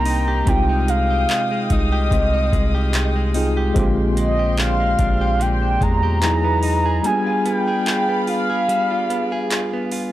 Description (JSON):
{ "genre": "contemporary R&B", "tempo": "73 BPM", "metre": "4/4", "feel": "swing 54% on 16ths", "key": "unclear", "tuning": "A4 = 440 Hz", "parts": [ { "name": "mellow horn-like synth lead", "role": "melody", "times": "0.0-9.9 s", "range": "Eb5 to Bb5", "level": "-22 LUFS", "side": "equal", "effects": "chorus, analog delay" }, { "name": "tine electric piano", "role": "accompaniment", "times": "0.0-10.1 s", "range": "D3 to Ab4", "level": "-24 LUFS", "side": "left 1 dB", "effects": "fast stereo tremolo" }, { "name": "dark studio string section", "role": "sustained chords", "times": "0.0-10.1 s", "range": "Ab3 to Eb6", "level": "-30 LUFS", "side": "left 1 dB", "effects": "none" }, { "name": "direct-recorded clean electric guitar", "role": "arpeggios", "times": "0.0-10.1 s", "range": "Bb2 to G#4", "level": "-26 LUFS", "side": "right 1 dB", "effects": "analog delay" }, { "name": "long sustained 808-style bass", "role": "bass", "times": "0.0-7.0 s", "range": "Bb1 to E2", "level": "-20 LUFS", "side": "equal", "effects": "none" }, { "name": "booming analog drum machine", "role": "drums", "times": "0.1-10.1 s", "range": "handclaps, hi-hat, kick drum", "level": "-22 LUFS", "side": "equal", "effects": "overdrive" } ], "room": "digital ambience", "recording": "dry, gritty hardware recording", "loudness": "-16 LUFS", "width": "side -14 dB against mid", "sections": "0.0-10.1 A section", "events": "break 7.0-10.1", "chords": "0.5 Fm9/C; 3.8 Bb13; 6.2 Emaj7; 7.0 G7b9", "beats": "| 0.47 1.29 2.11 2.94 | 3.76 4.58 5.40 6.22 | 7.05 7.87 8.69 9.51" }